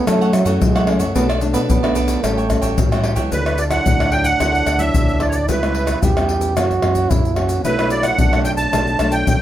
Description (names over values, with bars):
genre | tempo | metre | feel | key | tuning
samba and choro | 111 BPM | 4/4 | straight | A major, D major from 3.3 s | A4 = 440 Hz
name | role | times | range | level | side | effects
warm trombone | second line | 0.0-9.4 s | F#3 to G4 | -22 LUFS | right 4 dB | none
cavaquinho | accompaniment | 0.0-3.3 s | D4 to G5 | -28 LUFS | right 5 dB | none
nylon-string guitar | accompaniment | 0.0-9.4 s | F#2 to F#4 | -24 LUFS | left 3 dB | none
fingered electric bass with an envelope filter | bass | 0.1-9.4 s | A1 to F#3 | -21 LUFS | equal | none
tube shaker, surdo, pandeiro and tamborim | percussion | 0.1-9.4 s | none | -19 LUFS | left 1 dB | none
musette accordion | melody | 3.3-9.4 s | B4 to A5 | -20 LUFS | right 2 dB | none
room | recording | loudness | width
light reverb | none | -15 LUFS | side -12 dB against mid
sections
0.0-3.3 A section; 3.3-9.4 B section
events
trombone solo 0.0-3.3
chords
0.0 F#m7; 1.2 Bm7; 2.2 A13; 3.3 D69; 5.5 C#m7b5; 6.6 F#7; 7.6 Bm7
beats
0.07 0.61 | 1.15 1.70 2.24 2.78 | 3.32 3.86 4.40 4.94 | 5.49 6.03 6.57 7.11 | 7.65 8.19 8.73 9.27